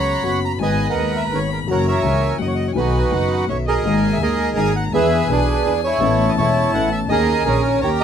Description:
tango; 166 BPM; 3/4; rubato; B major, G# minor from 3.8 s; A4 = 440 Hz
bandoneon; melody; 0.0-8.0 s; C#4 to B5; -19 LUFS; right 3 dB
warm violin; second line; 0.0-8.0 s; D#5 to B5; -28 LUFS; left 4 dB
warm upright piano; accompaniment; 0.0-8.0 s; D#1 to A4; -22 LUFS; left 5 dB
dark chamber string section; stabs; 0.0-8.0 s; A#3 to A4; -32 LUFS; left 2 dB
warm double bass; bass; 0.0-8.0 s; E1 to E2; -23 LUFS; right 1 dB
light reverb; band playing live in one room; -16 LUFS; side -8 dB against mid
0.0-3.8 A section; 3.8-8.0 B section
0.0 F#sus4; 0.6 G#madd9; 1.7 F#7; 2.8 B; 3.8 G#sus2; 4.9 E7; 6.0 Aadd9; 7.1 D#7sus4

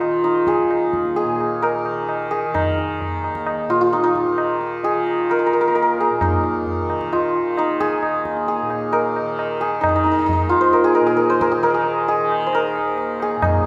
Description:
indian classical, Hindustani; 132 BPM; 4/4; straight; Eb raga durga; A4 = 440 Hz
santur; melody; 0.0-13.7 s; Eb4 to C5; -20 LUFS; equal
tanpura; drone; 0.0-13.7 s; Eb2 to Eb3; -32 LUFS; equal
tabla; percussion; 0.0-13.6 s; -28 LUFS; equal
wet recital hall reverb, RT60 1.3 s; recorded in a church or concert hall; -19 LUFS; mono
0.0-6.2 A section; 6.2-13.7 B section
speeding up 0.0-13.7

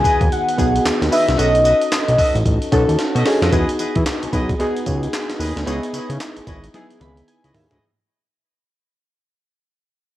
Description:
R&B, new jack swing; 112 BPM; 4/4; swing 62% on 16ths; E major; A4 = 440 Hz
warm velvety synth lead; melody; 0.0-3.0 s; D#5 to G#5; -17 LUFS; equal; chorus, cassette tape
warm analog keys; accompaniment; 0.0-7.8 s; D#3 to B5; -21 LUFS; equal; chorus, cassette tape
warm horn section; stabs; 0.0-7.8 s; E4 to D#5; -30 LUFS; equal; cassette tape, tape echo
fat analog bass; bass; 0.0-7.8 s; G#1 to E3; -20 LUFS; equal
breakbeat sampler-style drum kit; drums; 0.0-7.8 s; handclaps, hi-hat, kick drum, snare drum, tambourine, toms; -22 LUFS; equal; cassette tape
digital ambience; home recording on cassette; -15 LUFS; side -14 dB against mid
0.0-3.5 A section; 3.5-7.8 B section
drum fill 3.0-3.5, 6.7-7.8; fade-out 3.5-7.8; synth keys fill 6.7-7.8
0.0 Emaj7; 1.4 B7; 3.5 Emaj7; 5.7 C#m9

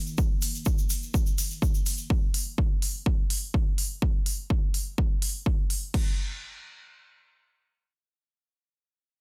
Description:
melodic techno; 125 BPM; 4/4; straight; A4 = 444 Hz
analog drone; drone; 0.0-2.2 s; Eb3 to Bb3; -47 LUFS; equal; chorus, sidechain pumping
egg shaker; percussion; 0.1-2.1 s; -38 LUFS; equal
techno drum kit; drums; 0.2-6.1 s; crash cymbal, kick drum; -28 LUFS; equal; overdrive
electronic hi-hat; drums; 0.4-5.8 s; -34 LUFS; equal; overdrive
little or no reverb; dense, heavily limited modern master; -27 LUFS; mono
0.0-5.9 A section; 5.9-9.2 B section
0.0 Eb5; 2.1 N.C.

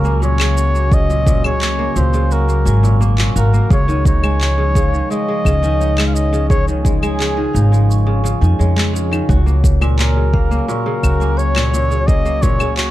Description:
folktronica; 86 BPM; 4/4; straight; A4 = 441 Hz
warm flugelhorn; melody; 0.0-12.9 s; Ab4 to F5; -22 LUFS; left 1 dB; tape echo
vibraphone with medium hard mallets; second line; 0.0-12.9 s; Db4 to Db6; -26 LUFS; right 2 dB; vintage 12-bit sampler grit, ping-pong delay
warbly tape-like pad; sustained chords; 0.0-12.9 s; Db3 to Gb4; -26 LUFS; left 1 dB; chorus, built-in reverb
kora; arpeggios; 0.0-12.9 s; Bb2 to Gb4; -22 LUFS; equal; tape echo
upright bass; bass; 0.0-12.9 s; Ab1 to F2; -15 LUFS; equal
electronic shaker, handclaps and claves; drums; 0.1-12.9 s; -23 LUFS; left 1 dB
electronic kick drum; drums; 0.9-12.6 s; -15 LUFS; equal
small room ambience; dark, warm production; -13 LUFS; side -15 dB against mid
0.0-12.9 A section
0.0 Gb/Db; 3.7 Dbadd9; 9.3 Gb/Db

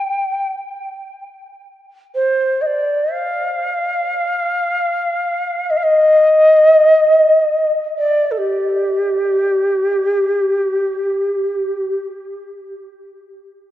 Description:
world meditative, free-time meditation music; free time; A4 = 440 Hz
mellow hollow Native American-style cedar flute; solo; 0.0-12.1 s; G4 to G5; -14 LUFS; equal; diffuse ambient delay
wet huge ambient reverb, RT60 4.6 s; worn, warbling old tape, cassette tape, warbly pitch drift; -14 LUFS; side -13 dB against mid
0.0-12.8 A section

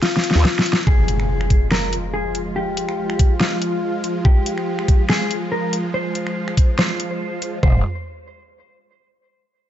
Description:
heavy wobble dubstep; 142 BPM; 4/4; swing 54% on 16ths, half-time; F minor; A4 = 439 Hz
mellow electric guitar; melody; 0.0-7.8 s; F4 to C5; -24 LUFS; left 2 dB; ping-pong delay
dubstep drum kit; drums; 0.0-7.5 s; finger snaps, hi-hat, ride cymbal, snare drum; -21 LUFS; equal; overdrive
growl bass; bass; 0.4, 7.6-7.8 s; F1 to Eb2; -17 LUFS; equal; chorus, overdrive
supersaw chords; sustained chords; 0.9-7.8 s; F3 to F4; -26 LUFS; right 1 dB; sidechain pumping
dubstep drum kit; drums; 0.9-7.7 s; kick drum, toms; -14 LUFS; equal; overdrive
impact; sound effects; 0.9-2.6 s; -23 LUFS; equal
digital ambience; nothing above 7.8 kHz; -17 LUFS; side -11 dB against mid
0.9-7.6 A section; 7.6-9.3 B section
drum fill 0.0-0.9; impact 0.9-2.6
0.0 N.C.; 0.9 Fmadd9

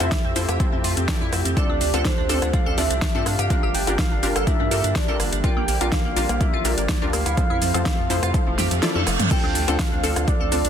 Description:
progressive house; 124 BPM; 4/4; straight; D minor; A4 = 441 Hz
soft octave-layered synth lead; melody; 0.0-10.7 s; C5 to G5; -28 LUFS; right 2 dB; chorus, phaser, vintage 12-bit sampler grit, digital delay
lush unison pad; sustained chords; 0.0-10.7 s; C3 to F5; -31 LUFS; right 1 dB; chorus, sidechain pumping
glassy wavetable pluck; arpeggios; 0.0-10.7 s; F3 to A4; -29 LUFS; equal; chorus, phaser, sidechain pumping, digital delay
wide unison pluck; stabs; 0.0-10.6 s; C4 to D5; -28 LUFS; left 2 dB; vintage 12-bit sampler grit, sidechain pumping, digital delay
round analog bass; bass; 0.0-10.7 s; F1 to G2; -26 LUFS; equal; sidechain pumping
deep house drum kit; drums; 0.0-10.7 s; crash cymbal, hi-hat, rim click, shaker, snare drum, toms; -27 LUFS; right 1 dB; overdrive, studio reverb
cowbell, congas and woodblock; percussion; 0.0-10.5 s; -34 LUFS; left 7 dB
electronic kick drum; drums; 0.1-10.4 s; -23 LUFS; equal; overdrive, studio reverb
reverse cymbal; sound effects; 8.5-9.3 s; -30 LUFS; right 5 dB
light reverb, digital ambience; dense, heavily limited modern master; -19 LUFS; side -8 dB against mid
0.0-10.7 A section
reverse cymbal 8.5-9.3; kick drops out 8.8-9.3; drum fill 8.8-9.3
0.0 Fmaj7; 1.6 Dm7; 3.5 Gm7; 5.4 Bb6; 7.4 Fmaj7; 9.3 Dm7

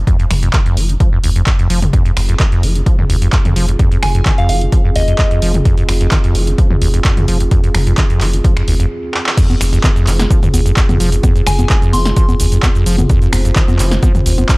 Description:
acid house; 129 BPM; 4/4; straight; F minor; A4 = 442 Hz
saturated sub bass; bass; 0.0-14.4 s; F1; -15 LUFS; equal; sidechain pumping
acid bass, saw; riff; 0.1-14.6 s; Eb2 to F3; -17 LUFS; equal
electronic kick drum; drums; 0.1-14.6 s; -13 LUFS; equal
punchy analog drum machine; drums; 0.1-14.6 s; congas, crash cymbal, finger snaps, handclaps, hi-hat, shaker, snare drum, toms; -19 LUFS; equal
dark analog pad; sustained chords; 1.9-14.6 s; C4 to C5; -24 LUFS; right 1 dB; chorus, sidechain pumping
soft synth bell; melody; 4.0-5.3, 11.5-12.3 s; Eb5 to C6; -22 LUFS; equal; chorus, analog delay
digital ambience; -10 LUFS; side -24 dB against mid
0.0-9.4 A section; 9.4-14.6 B section
break 8.9-9.4; drum fill 9.1; band accent 9.3; drop 9.4-14.6
0.0 Fm

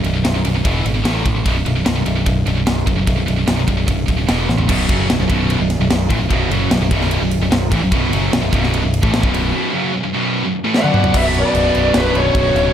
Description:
heavy metal; 149 BPM; 4/4; straight; B minor; A4 = 441 Hz
heavy high-gain guitar; riff; 0.0-12.7 s; B1 to A3; -23 LUFS; left 10 dB; distortion
heavy high-gain guitar; riff; 0.0-12.7 s; B1 to A3; -23 LUFS; right 11 dB; distortion
growling picked electric bass; bass; 0.0-12.7 s; B0 to A1; -19 LUFS; equal; overdrive
tight metal drum kit; drums; 0.0-12.6 s; crash cymbal, kick drum, ride cymbal, snare drum, toms; -19 LUFS; equal
crunchy overdriven guitar; riff; 4.7-12.7 s; B1 to D4; -21 LUFS; equal
high-gain lead guitar; melody; 10.8-12.7 s; B4 to F#5; -17 LUFS; left 2 dB; distortion
bluesy overdriven lead guitar; second line; 10.8-12.7 s; F#4 to D5; -24 LUFS; equal; distortion, ping-pong delay
light reverb; dark, warm production; -14 LUFS; side -10 dB against mid
0.0-4.7 A section; 4.7-11.1 B section; 11.1-12.7 C section
drum fill 4.5, 10.7-11.1; half time 11.1-12.7
0.0 B5; 0.7 E5; 1.1 A5; 1.5 B5; 4.3 E5; 4.7 B5; 11.1 Bm

